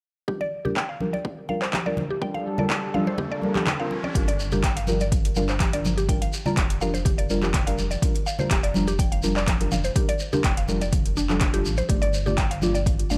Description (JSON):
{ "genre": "afro house", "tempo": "124 BPM", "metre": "4/4", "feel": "straight", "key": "G minor", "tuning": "A4 = 438 Hz", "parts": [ { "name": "mallet-like synth pluck", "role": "arpeggios", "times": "0.3-13.2 s", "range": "D4 to G5", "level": "-33 LUFS", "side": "equal", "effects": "chorus, vintage 12-bit sampler grit, sidechain pumping, delay" }, { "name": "deep mellow chord stab", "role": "stabs", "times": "0.3-13.2 s", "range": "G3 to D5", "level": "-31 LUFS", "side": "equal", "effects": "chorus, phaser, vintage 12-bit sampler grit, sidechain pumping, delay" }, { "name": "electronic kick drum", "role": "drums", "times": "0.3-13.0 s", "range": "none", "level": "-27 LUFS", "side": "equal", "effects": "overdrive, high-pass filter on kick, studio reverb" }, { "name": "riser", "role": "sound effects", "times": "1.7-4.2 s", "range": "none", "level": "-39 LUFS", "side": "equal", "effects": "none" }, { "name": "congas", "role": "percussion", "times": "0.4-13.2 s", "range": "none", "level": "-33 LUFS", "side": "equal", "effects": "none" }, { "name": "deep house drum kit", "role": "drums", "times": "0.8-13.1 s", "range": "handclaps, hi-hat", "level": "-32 LUFS", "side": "equal", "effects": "overdrive, studio reverb" }, { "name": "warm analog pad", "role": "sustained chords", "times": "2.2-4.1 s", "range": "G3 to A4", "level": "-34 LUFS", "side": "equal", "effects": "chorus, sidechain pumping" }, { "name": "shekere", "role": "percussion", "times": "4.1-13.2 s", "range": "none", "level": "-38 LUFS", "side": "equal", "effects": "none" }, { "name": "round analog bass", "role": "bass", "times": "4.2-13.2 s", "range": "F1 to A1", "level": "-30 LUFS", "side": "equal", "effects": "sidechain pumping" } ], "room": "little or no reverb", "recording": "none", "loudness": "-24 LUFS", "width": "mono", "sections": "0.3-4.2 A section; 4.2-13.2 B section", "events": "filter sweep on synth pluck 0.3-4.2; filter sweep on synth stab 0.3-4.2; riser 1.7-4.2", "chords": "0.3 Gm7; 11.9 Dm", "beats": "| 0.28 0.77 1.25 1.73 | 2.22 2.70 3.19 3.67 | 4.15 4.64 5.12 5.61 | 6.09 6.57 7.06 7.54 | 8.02 8.51 8.99 9.48 | 9.96 10.44 10.93 11.41 | 11.89 12.38 12.86" }